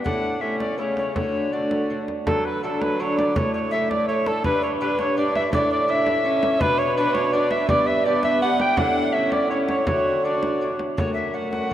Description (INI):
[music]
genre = classical, renaissance-style consort dance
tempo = 165 BPM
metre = 3/4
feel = straight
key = D major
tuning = A4 = 440 Hz
[part]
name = alto recorder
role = melody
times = 0.0-11.7 s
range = A4 to G5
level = -28 LUFS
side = left 3 dB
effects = none
[part]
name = warm cor anglais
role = second line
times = 0.0-11.7 s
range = C#4 to G5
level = -23 LUFS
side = right 2 dB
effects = none
[part]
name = dark viola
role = accompaniment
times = 0.0-11.7 s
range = F#3 to F#4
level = -28 LUFS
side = left 2 dB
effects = none
[part]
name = lute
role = accompaniment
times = 0.0-11.7 s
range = F#2 to B4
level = -30 LUFS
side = left 1 dB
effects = none
[part]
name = warm bassoon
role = bass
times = 0.0-11.7 s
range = F#2 to D3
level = -29 LUFS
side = right 1 dB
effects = none
[part]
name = frame drum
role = percussion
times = 0.1-11.7 s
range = none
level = -30 LUFS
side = right 1 dB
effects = none
[sound]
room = wet cathedral reverb, RT60 5.4 s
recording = in a vast, echoing space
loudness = -19 LUFS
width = side -11 dB against mid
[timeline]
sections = 0.0-2.3 A section; 2.3-11.0 A section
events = none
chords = 0.1 Asus4; 0.4 A; 1.2 D; 3.4 A5; 4.4 G; 5.5 Asus4; 6.2 A; 6.6 Bm; 7.7 G; 8.8 Asus4; 9.1 A; 9.9 D; 11.0 F#m